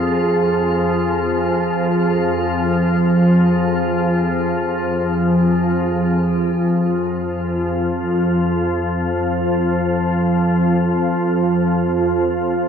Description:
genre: dark ambient drone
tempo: free time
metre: none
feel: none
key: F minor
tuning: A4 = 440 Hz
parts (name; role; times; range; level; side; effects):
- gamelan-type bossed gongs; arpeggios; 0.0-5.8 s; C4; -34 LUFS; left 2 dB; none
- organ-like drone; drone; 0.0-12.7 s; F2 to F3; -16 LUFS; equal; ensemble chorus, built-in reverb
- metallic inharmonic drone; texture; 0.0-6.3 s; Ab4; -25 LUFS; right 2 dB; chorus, built-in reverb
room: wet huge ambient reverb, RT60 8.3 s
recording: worn, warbling old tape, cassette tape, warbly pitch drift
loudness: -15 LUFS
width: side -7 dB against mid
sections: 0.0-6.3 A section; 6.3-12.7 A section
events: none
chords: 0.0 Fm; 6.3 N.C.

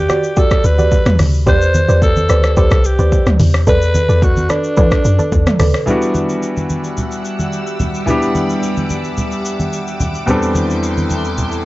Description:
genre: amapiano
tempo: 109 BPM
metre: 4/4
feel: straight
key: E minor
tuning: A4 = 441 Hz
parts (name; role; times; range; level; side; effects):
- breathy alto saxophone; melody; 0.0-5.6 s; D4 to C5; -19 LUFS; equal; tape echo
- deep log drum bass; bass; 0.0-5.7 s; C2 to E3; -14 LUFS; equal; none
- soft round pluck; stabs; 0.1-5.7 s; F#4 to D5; -18 LUFS; right 2 dB; chorus, tape echo
- deep house drum kit; drums; 0.1-11.6 s; hi-hat, kick drum, rim click, shaker, toms; -17 LUFS; equal; none
- congas; percussion; 0.1-11.5 s; none; -21 LUFS; equal; none
- clear baby grand piano; accompaniment; 5.9-11.7 s; E2 to A4; -18 LUFS; left 1 dB; none
- string machine, violins; sustained chords; 5.9-11.7 s; G3 to E6; -24 LUFS; equal; ensemble chorus, sidechain pumping
room: digital ambience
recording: dry, gritty hardware recording, cassette tape, nothing above 7.8 kHz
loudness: -12 LUFS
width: side -18 dB against mid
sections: 0.0-5.9 A section; 5.9-11.7 B section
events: drop 0.0-5.9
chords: 0.0 Em9 (rootless); 1.5 Am11; 3.4 Bm7/E; 5.9 Em9; 10.3 Am11/E

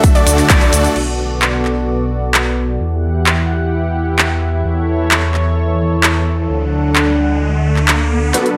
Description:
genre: EDM, festival progressive house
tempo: 130 BPM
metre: 4/4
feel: straight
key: unclear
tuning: A4 = 440 Hz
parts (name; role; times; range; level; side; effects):
- lush unison pad; sustained chords; 0.0-8.6 s; B2 to F#5; -21 LUFS; equal; chorus, sidechain pumping
- unison pluck; arpeggios; 0.0-0.9, 8.3-8.5 s; B4 to E5; -24 LUFS; equal; sidechain pumping, digital delay
- supersaw chords; riff; 0.0-0.9, 8.3-8.5 s; A3 to E5; -20 LUFS; equal; sidechain pumping, low-pass filter, digital delay
- detuned saw bass; bass; 0.0-8.3 s; A1 to E2; -20 LUFS; equal; chorus, tube saturation, sidechain pumping
- big-room dance drum kit; drums; 0.0-8.6 s; cabasa, crash cymbal, finger snaps, handclaps, hi-hat, snare drum; -18 LUFS; equal; overdrive, high-pass filter on hats, high-pass filter on perc, high-pass filter on snare, high-pass filter on cymbals
- electronic kick drum; drums; 0.0-0.6 s; none; -13 LUFS; equal; overdrive
- riser; sound effects; 6.0-8.6 s; none; -28 LUFS; equal; none
room: moderate digital room reverb, RT60 1.0 s, digital ambience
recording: none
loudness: -15 LUFS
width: mono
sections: 1.0-8.3 A section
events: band accent 0.5; riser 6.0-8.3; drum fill 8.3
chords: 0.0 D; 1.0 Bm7; 2.8 Emadd9; 4.7 A/E; 6.5 D

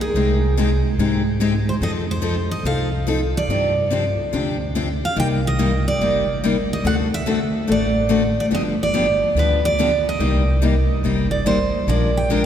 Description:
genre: acoustic string swing (jazz manouche)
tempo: 143 BPM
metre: 4/4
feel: swing 64% on 8ths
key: C minor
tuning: A4 = 441 Hz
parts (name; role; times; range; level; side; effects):
- picked steel-string acoustic guitar; melody; 0.0-12.4 s; Ab4 to G5; -22 LUFS; right 2 dB; none
- upright bass; bass; 0.1-12.5 s; G1 to Ab2; -22 LUFS; right 1 dB; none
- picked steel-string acoustic guitar; accompaniment; 0.2-12.4 s; C3 to Bb4; -21 LUFS; left 3 dB; none
room: wet cathedral reverb, RT60 6.0 s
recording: recorded in a church or concert hall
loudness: -17 LUFS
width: side -9 dB against mid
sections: 0.0-11.9 A section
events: none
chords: 0.2 Abmaj7/C; 1.8 F7; 3.5 G7sus4; 5.2 Cm7; 6.8 D7; 8.5 G7; 10.2 Cm7; 11.9 Bb7

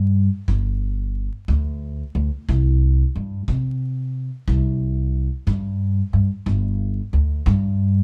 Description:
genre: acoustic country blues, solo or duo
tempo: 60 BPM (dotted quarters)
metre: 12/8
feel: straight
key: unclear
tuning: A4 = 439 Hz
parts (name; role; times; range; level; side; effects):
- upright bass; bass; 0.0-8.0 s; G1 to C3; -22 LUFS; equal; none
- kick drum; drums; 0.5-7.6 s; none; -29 LUFS; equal; none
room: light reverb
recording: vinyl crackle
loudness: -22 LUFS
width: mono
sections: 0.0-8.0 A section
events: none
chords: none

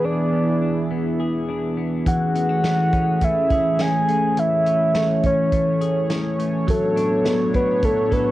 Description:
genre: dream pop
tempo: 104 BPM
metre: 4/4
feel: straight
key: unclear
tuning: A4 = 439 Hz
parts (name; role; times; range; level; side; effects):
- soft octave-layered synth lead; melody; 0.0-8.3 s; A4 to G#5; -21 LUFS; equal; chorus, cassette tape, tape echo
- warm analog pad; sustained chords; 0.0-8.3 s; A2 to C#5; -22 LUFS; right 1 dB; chorus, cassette tape
- clean electric guitar; arpeggios; 0.0-8.3 s; E3 to A4; -26 LUFS; left 4 dB; lush chorus, cassette tape, tape echo
- vintage drum kit; drums; 2.1-8.3 s; hi-hat, kick drum, snare drum; -25 LUFS; equal; cassette tape
room: wet studio reverb, RT60 0.6 s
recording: home recording on cassette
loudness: -18 LUFS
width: side -15 dB against mid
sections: 0.0-8.3 A section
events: none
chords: 0.0 E7; 2.1 Amaj7; 6.7 D6/A

